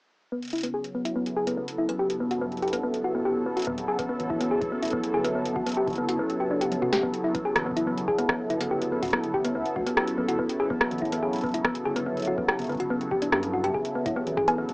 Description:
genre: IDM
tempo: 143 BPM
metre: 4/4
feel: straight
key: unclear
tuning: A4 = 436 Hz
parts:
  - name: phased analog pad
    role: sustained chords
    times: 0.7-14.7 s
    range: G2 to A4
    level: -29 LUFS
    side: equal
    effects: phaser, chorus, vintage 12-bit sampler grit, sidechain pumping, cassette tape
  - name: thumb-piano-like synth pluck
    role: arpeggios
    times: 0.3-14.7 s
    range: B3 to G#4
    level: -27 LUFS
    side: left 1 dB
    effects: chorus, cassette tape, tape echo
  - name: booming analog drum machine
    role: drums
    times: 0.4-14.7 s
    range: bongos, hi-hat, rim click, snare drum, toms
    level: -28 LUFS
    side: equal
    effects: cassette tape
  - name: electronic kick drum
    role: drums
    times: 3.7-14.5 s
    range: none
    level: -40 LUFS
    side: equal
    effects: cassette tape
  - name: round analog bass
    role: bass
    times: 4.2-14.7 s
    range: D1 to G2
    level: -37 LUFS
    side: equal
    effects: none
room: wet studio ambience, RT60 0.5 s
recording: home recording on cassette, small speaker sound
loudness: -24 LUFS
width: side -26 dB against mid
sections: 0.3-7.0 A section; 7.0-14.7 B section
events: filter sweep on synth arpeggio sound 0.3-7.0; kick drops out 6.2-7.0; drum fill 6.7-7.0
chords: 0.3 Aadd9; 2.0 Gmaj9; 3.7 Amaj9; 5.4 Gmaj9; 7.0 Aadd9; 8.7 Gmaj9; 10.4 Amaj9; 12.1 Gmaj9; 13.7 Amaj9

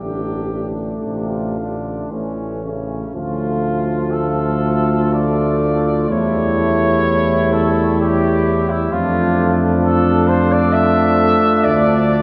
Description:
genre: classical, hymn-like piece for brass band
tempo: 55-66 BPM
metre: 3/4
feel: rubato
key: D minor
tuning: A4 = 441 Hz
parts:
  - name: dark cornet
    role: melody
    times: 0.0-12.2 s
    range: E4 to E5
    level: -23 LUFS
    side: equal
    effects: none
  - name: warm flugelhorn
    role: second line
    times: 0.0-12.2 s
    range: C#4 to F4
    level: -26 LUFS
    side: equal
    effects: none
  - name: clear euphonium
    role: accompaniment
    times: 0.0-12.2 s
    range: C3 to G3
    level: -27 LUFS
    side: equal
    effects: none
  - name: clear trombone section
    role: accompaniment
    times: 0.0-12.2 s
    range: A3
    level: -24 LUFS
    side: equal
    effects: none
  - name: mellow tuba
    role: bass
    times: 0.0-12.2 s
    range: A1 to F2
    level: -22 LUFS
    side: equal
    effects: none
room: wet cathedral reverb, RT60 5.7 s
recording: heard from further back in the room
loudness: -17 LUFS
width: mono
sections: 0.0-3.2 A section; 3.2-12.2 B section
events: none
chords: 0.0 Dm/A; 2.1 A; 3.2 Dm; 6.1 A7/E; 8.9 Dm/F; 11.7 Dm

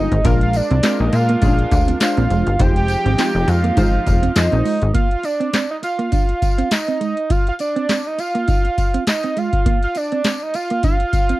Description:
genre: early-eighties boogie funk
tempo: 102 BPM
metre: 4/4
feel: swing 56% on 16ths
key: unclear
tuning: A4 = 442 Hz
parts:
  - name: fat analog lead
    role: melody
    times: 0.0-11.4 s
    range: D5 to G5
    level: -21 LUFS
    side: right 2 dB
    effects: slapback echo
  - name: funky polysynth comp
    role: accompaniment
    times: 0.0-4.8 s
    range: G3 to C5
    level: -24 LUFS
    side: left 3 dB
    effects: chorus
  - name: warm studio string section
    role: sustained chords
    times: 0.0-4.9 s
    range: F3 to G5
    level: -31 LUFS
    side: left 1 dB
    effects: none
  - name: mellow electric guitar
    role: riff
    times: 0.0-11.4 s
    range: Ab3 to F4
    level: -23 LUFS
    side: right 6 dB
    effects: analog chorus
  - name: plucky analog bass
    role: bass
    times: 0.0-4.9 s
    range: F1 to Bb2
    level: -17 LUFS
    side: left 1 dB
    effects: none
  - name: booming analog drum machine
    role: drums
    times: 0.1-11.4 s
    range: handclaps, hi-hat, kick drum, snare drum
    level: -18 LUFS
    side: left 1 dB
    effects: none
  - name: tambourine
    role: percussion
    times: 0.2-11.3 s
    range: none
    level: -35 LUFS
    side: left 7 dB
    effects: none
room: little or no reverb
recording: dry, close 1970s-style studio recording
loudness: -15 LUFS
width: side -17 dB against mid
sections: 0.0-5.0 A section; 5.0-11.4 B section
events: none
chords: 0.2 Bb7; 2.6 Fm7; 5.0 Bb; 7.3 F7(no3); 9.7 Bb

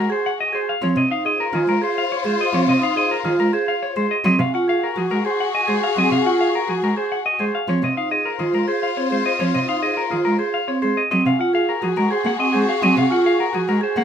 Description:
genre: classical, minimalist pattern music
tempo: 105 BPM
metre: 3/4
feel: straight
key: Ab mixolydian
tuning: A4 = 441 Hz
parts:
  - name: semi-hollow electric guitar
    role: melody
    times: 0.0-14.0 s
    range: Ab4 to Gb5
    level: -22 LUFS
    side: left 3 dB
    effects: none
  - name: warm cello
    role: accompaniment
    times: 0.0-14.0 s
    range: C3 to Bb3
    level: -23 LUFS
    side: right 1 dB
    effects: none
  - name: warm symphonic string section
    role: sustained chords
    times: 0.0-14.0 s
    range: F4 to C5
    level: -26 LUFS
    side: left 5 dB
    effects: none
  - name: vibraphone with medium hard mallets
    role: arpeggios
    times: 0.1-14.0 s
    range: C4 to Ab4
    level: -21 LUFS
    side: right 3 dB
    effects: none
room: light reverb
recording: close, detailed microphones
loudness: -17 LUFS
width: side -8 dB against mid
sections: 0.0-14.0 A section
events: none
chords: 0.0 Ab7; 0.8 Dbmaj9 (rootless); 4.3 Ab13/C; 7.7 Dbmaj9 (rootless); 11.1 Ab13/C

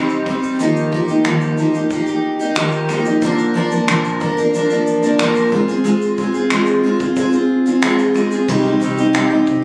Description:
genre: acoustic pop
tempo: 91 BPM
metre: 4/4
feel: straight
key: C minor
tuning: A4 = 441 Hz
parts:
  - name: picked steel-string acoustic guitar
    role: accompaniment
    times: 0.0-9.6 s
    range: Bb2 to Bb4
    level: -17 LUFS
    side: equal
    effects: double-tracked, plate reverb
  - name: vintage brush drum kit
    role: drums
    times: 0.1-9.6 s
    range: crash cymbal, finger snaps, kick drum, shaker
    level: -26 LUFS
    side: equal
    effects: none
  - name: upright bass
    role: bass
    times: 8.5-9.6 s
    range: C2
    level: -27 LUFS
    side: equal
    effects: none
room: wet studio reverb, RT60 0.6 s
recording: recorded on a phone in the room, club reverb, compression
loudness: -16 LUFS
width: mono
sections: 0.0-8.5 A section; 8.5-9.6 B section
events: none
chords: 0.0 Cm; 0.6 Ebadd9; 3.2 Bb; 5.5 Fm/Ab; 8.5 Cm

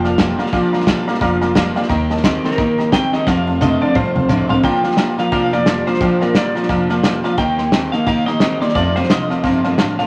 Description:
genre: rockabilly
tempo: 175 BPM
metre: 4/4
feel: swing 60% on 8ths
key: Bb major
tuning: A4 = 444 Hz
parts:
  - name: electric guitar through a small old amp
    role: melody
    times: 0.0-10.1 s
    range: Bb4 to G5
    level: -24 LUFS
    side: equal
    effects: tremolo
  - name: picked steel-string acoustic guitar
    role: accompaniment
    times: 0.0-10.1 s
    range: F2 to G4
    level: -25 LUFS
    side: equal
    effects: none
  - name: tack piano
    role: accompaniment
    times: 0.0-10.1 s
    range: C5 to C6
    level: -26 LUFS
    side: equal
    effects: none
  - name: electric guitar through a small old amp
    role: riff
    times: 0.0-10.1 s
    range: F2 to C4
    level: -21 LUFS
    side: equal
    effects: none
  - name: upright bass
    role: bass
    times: 0.0-10.1 s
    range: F1 to F2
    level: -30 LUFS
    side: equal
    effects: none
  - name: cloth-damped thuddy drum kit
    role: drums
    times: 0.0-10.0 s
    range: hi-hat, kick drum, snare drum, toms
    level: -22 LUFS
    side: equal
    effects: none
room: moderate studio reverb, RT60 0.7 s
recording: vinyl crackle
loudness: -16 LUFS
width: mono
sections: 0.0-4.6 A section; 4.6-10.1 B section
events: drum fill 3.3-4.6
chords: 0.0 Bb; 1.9 Eb; 3.3 F7; 4.6 Bb; 7.4 Eb; 8.8 F7

